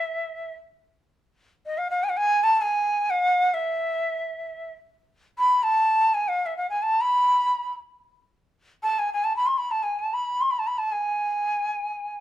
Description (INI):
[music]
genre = Persian modal ensemble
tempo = free time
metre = none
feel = none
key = E dastgah chahargah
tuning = A4 = 440 Hz
[part]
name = breathy bright ney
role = solo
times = 0.0-12.2 s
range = D#5 to C6+47c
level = -22 LUFS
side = equal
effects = none
[sound]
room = moderate large studio reverb, RT60 0.9 s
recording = band playing live in one room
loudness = -22 LUFS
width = side -13 dB against mid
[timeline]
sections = 0.0-4.9 A section; 4.9-12.2 A section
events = none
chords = none